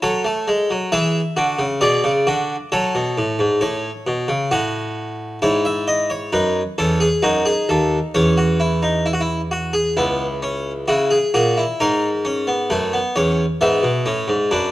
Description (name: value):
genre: classical, baroque-style 3-part fugue for harpsichord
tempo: 66 BPM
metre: 3/4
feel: straight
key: F# minor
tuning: A4 = 439 Hz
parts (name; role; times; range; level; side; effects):
- harpsichord; solo; 0.0-14.7 s; C#2 to F#5; -17 LUFS; equal; none
room: moderate recital hall reverb, RT60 1.4 s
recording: close, detailed microphones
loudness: -17 LUFS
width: side -16 dB against mid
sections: 0.0-10.9 A section; 10.9-14.7 B section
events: none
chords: 0.0 F#m; 1.8 Bm; 2.7 F#m; 4.5 F#m/A; 5.4 C#m/G#; 7.2 F#m; 8.1 C#m/E; 10.0 C#m; 10.9 F#7; 12.7 B5/F#; 13.6 E7/G#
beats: | 0.02 0.91 1.81 | 2.71 3.61 4.51 | 5.41 6.32 7.23 | 8.13 9.05 9.96 | 10.87 11.79 12.70 | 13.60 14.50